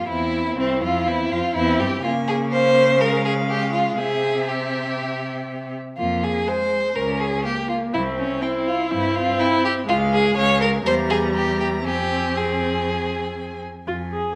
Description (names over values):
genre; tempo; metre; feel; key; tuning
quick classical-period movement for string quartet; 122 BPM; 4/4; straight; F minor; A4 = 440 Hz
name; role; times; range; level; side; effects
warm violin; melody; 0.0-14.4 s; C4 to Bb5; -33 LUFS; equal; none
rich violin; second line; 0.0-13.6 s; C4 to Db5; -24 LUFS; equal; none
warm viola; accompaniment; 0.0-14.4 s; G3 to Ab4; -28 LUFS; equal; none
clear cello; bass; 0.1-14.3 s; C2 to Db3; -29 LUFS; equal; none
room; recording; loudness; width
wet recital hall reverb, RT60 1.5 s; none; -21 LUFS; mono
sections
0.0-13.9 A section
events
none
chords
0.1 C; 2.0 Db; 4.0 C; 6.0 Fm; 7.0 Bbm/Db; 7.9 C; 9.9 Db; 10.8 Edim; 11.8 Fm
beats
| 0.08 0.57 1.06 1.55 | 2.03 2.52 3.00 3.49 | 3.99 4.48 4.98 5.48 | 5.97 6.47 6.96 7.45 | 7.94 8.42 8.91 9.39 | 9.88 10.36 10.85 11.34 | 11.84 12.36 12.87 13.38 | 13.88